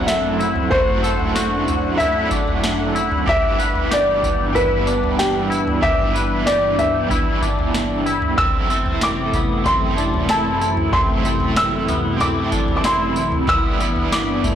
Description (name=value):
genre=dream pop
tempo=94 BPM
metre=4/4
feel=straight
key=unclear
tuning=A4 = 436 Hz
part: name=felt-muted upright piano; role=melody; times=0.0-14.6 s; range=G4 to E6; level=-21 LUFS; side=equal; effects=tape echo
part: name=cranked stack guitar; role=accompaniment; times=0.0-14.6 s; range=F#3 to E5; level=-25 LUFS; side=right 4 dB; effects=overdrive, tremolo, wide subtle chorus
part: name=lush unison pad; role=sustained chords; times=0.0-14.6 s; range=F#2 to F#5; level=-23 LUFS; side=equal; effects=chorus
part: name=clean electric guitar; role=arpeggios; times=0.0-14.6 s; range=A3 to B4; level=-25 LUFS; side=left 4 dB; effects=analog chorus, tape echo
part: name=booming analog drum machine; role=drums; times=0.1-14.6 s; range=kick drum, snare drum, tambourine, toms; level=-23 LUFS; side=equal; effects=none
room=moderate plate reverb, RT60 2.9 s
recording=blown-out, overdriven recording, overdrive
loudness=-16 LUFS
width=side -9 dB against mid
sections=0.0-8.4 A section; 8.4-14.6 B section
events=none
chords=0.0 F#m7b5; 3.3 Em7/G; 8.4 F#m7b5; 13.5 Em7/G